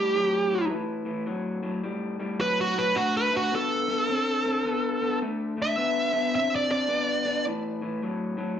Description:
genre	blues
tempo	106 BPM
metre	4/4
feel	swing 64% on 8ths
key	unclear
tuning	A4 = 440 Hz
part	dark smooth lead guitar	melody	0.0-7.4 s	F#4 to E5	-25 LUFS	right 1 dB	overdrive, plate reverb, slapback echo
part	electric guitar through a small old amp	riff	0.0-8.6 s	A2 to C4	-29 LUFS	left 3 dB	slapback echo
room	light reverb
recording	live gig heard through the venue's PA, club reverb, nothing above 8.0 kHz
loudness	-24 LUFS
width	side -9 dB against mid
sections	0.0-8.6 A section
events	none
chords	0.0 A5; 3.0 D5; 7.5 A5

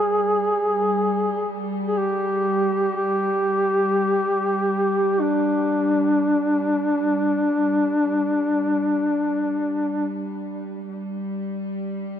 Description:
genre	caucasian folk, Caucasian lament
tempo	free time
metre	none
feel	none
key	unclear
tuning	A4 = 439 Hz
part	mellow duduk	melody	0.0-10.1 s	D4 to Ab4	-20 LUFS	equal	none
part	rich studio cello section	drone	0.0-12.2 s	G3	-28 LUFS	right 1 dB	none
room	wet cathedral reverb, RT60 5.6 s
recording	none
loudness	-20 LUFS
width	side -9 dB against mid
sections	0.0-12.2 A section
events	none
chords	none

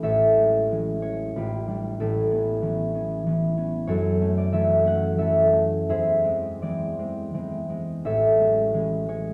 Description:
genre	classical, solo harp piece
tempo	81-97 BPM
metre	3/4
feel	rubato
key	unclear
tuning	A4 = 439 Hz
part	concert harp	solo	0.0-9.3 s	A1 to F#5	-23 LUFS	equal	none
room	wet recital hall reverb, RT60 1.6 s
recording	heard from further back in the room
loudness	-23 LUFS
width	mono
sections	0.0-9.3 A section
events	none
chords	0.0 Amaj7; 1.4 G9/A; 2.0 Aadd9; 3.9 F#m7; 5.9 Eaug7; 8.0 Amaj7

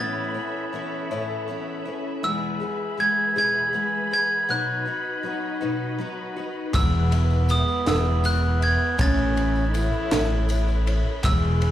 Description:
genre	indie folk with a building arrangement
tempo	53 BPM (dotted quarters)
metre	6/8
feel	straight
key	E major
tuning	A4 = 440 Hz
part	glockenspiel with hard plastic mallets	melody	0.0-11.7 s	D#6 to A6	-26 LUFS	right 1 dB	slapback echo
part	picked twelve-string acoustic guitar	accompaniment	0.0-11.7 s	E2 to G#4	-30 LUFS	left 5 dB	slapback echo
part	muted studio string section	sustained chords	0.0-11.7 s	F#4 to B5	-35 LUFS	right 1 dB	none
part	warm French horn	second line	6.7-11.7 s	B3 to G#4	-28 LUFS	right 2 dB	slapback echo
part	fingered electric bass	bass	6.7-11.7 s	E1 to A1	-21 LUFS	equal	none
part	compact cocktail drum kit	drums	6.7-11.7 s	kick drum, ride cymbal, snare drum	-28 LUFS	equal	none
part	group handclap	percussion	6.7-11.7 s	none	-36 LUFS	right 1 dB	none
part	tambourine	percussion	6.7-11.4 s	none	-44 LUFS	right 3 dB	none
room	little or no reverb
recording	live gig heard through the venue's PA, club reverb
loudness	-21 LUFS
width	side -12 dB against mid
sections	0.0-11.7 A section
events	none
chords	0.0 Aadd9; 2.2 E; 4.5 B; 6.7 E; 9.0 Aadd9

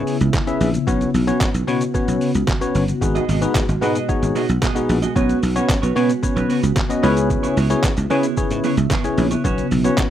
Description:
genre	dance-pop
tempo	112 BPM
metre	4/4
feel	straight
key	B major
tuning	A4 = 438 Hz
part	bell-like tine electric piano	accompaniment	0.0-10.1 s	B3 to E5	-21 LUFS	left 3 dB	analog chorus, sidechain pumping
part	glassy FM pad	sustained chords	0.0-10.1 s	B2 to F#4	-25 LUFS	equal	ensemble chorus, built-in reverb, sidechain pumping
part	trip hop sampler-style drum kit	drums	0.1-10.1 s	handclaps, hi-hat, kick drum, shaker, snare drum	-23 LUFS	equal	none
part	dry thumbed slap bass	bass	0.2-9.9 s	G1 to C#3	-20 LUFS	right 1 dB	sidechain pumping
part	group handclap	percussion	0.3-10.1 s	none	-34 LUFS	right 6 dB	none
part	clean electric guitar	riff	3.0-10.0 s	B3 to D#5	-25 LUFS	right 8 dB	lush chorus
room	light reverb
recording	rough home demo mix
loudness	-16 LUFS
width	side -11 dB against mid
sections	0.0-10.1 A section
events	none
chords	0.0 C#m7; 0.9 Bsus2; 3.0 G#m7; 5.2 Bsus2; 7.0 C#m7; 9.4 Bsus2

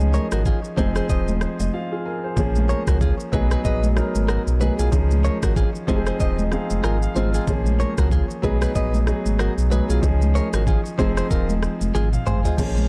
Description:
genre	afrobeats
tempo	94 BPM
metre	4/4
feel	swing 58% on 16ths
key	unclear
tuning	A4 = 439 Hz
part	warm concert grand piano	accompaniment	0.0-12.9 s	F3 to Ab5	-28 LUFS	equal	none
part	sub bass with octave	bass	0.0-12.9 s	Eb1 to Db2	-24 LUFS	equal	none
part	afro-pop drum kit	drums	0.0-12.9 s	crash cymbal, kick drum, rim click, shaker, toms	-26 LUFS	equal	none
part	congas	percussion	0.0-12.9 s	none	-32 LUFS	equal	none
part	direct-recorded clean electric guitar	riff	0.1-12.6 s	F4 to Eb5	-32 LUFS	equal	delay
room	little or no reverb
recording	dark, warm production, lossy compression artefacts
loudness	-21 LUFS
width	mono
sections	0.0-12.6 A section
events	grand piano fill 1.1-2.4, 5.6-7.5; break 1.7-2.4; drum fill 11.9-12.6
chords	0.0 Dbadd9; 0.8 Fm7; 2.4 Bbm7; 3.3 Cb6; 4.9 Dbadd9; 5.9 Fm7; 7.5 Bbm7; 8.4 Cb6; 10.0 Dbadd9; 11.0 Fm7

